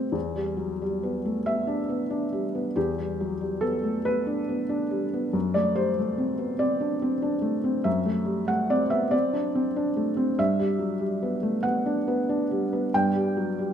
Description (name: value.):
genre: neoclassical minimalist piano.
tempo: 47 BPM (dotted quarters).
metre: 6/8.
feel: rubato.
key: E minor.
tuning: A4 = 440 Hz.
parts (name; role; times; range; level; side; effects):
felt-muted upright piano; solo; 0.0-13.7 s; E2 to G5; -24 LUFS; equal; none.
room: moderate recital hall reverb, RT60 1.4 s.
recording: minimal, uncompressed stereo recording.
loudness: -24 LUFS.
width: side -8 dB against mid.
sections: 0.1-13.7 A section.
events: none.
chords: 0.1 Em7; 5.3 D7/F#; 10.4 Gmaj7.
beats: | 0.15 1.46 | 2.75 4.05 | 5.34 6.61 | 7.86 9.13 | 10.39 11.64 | 12.93.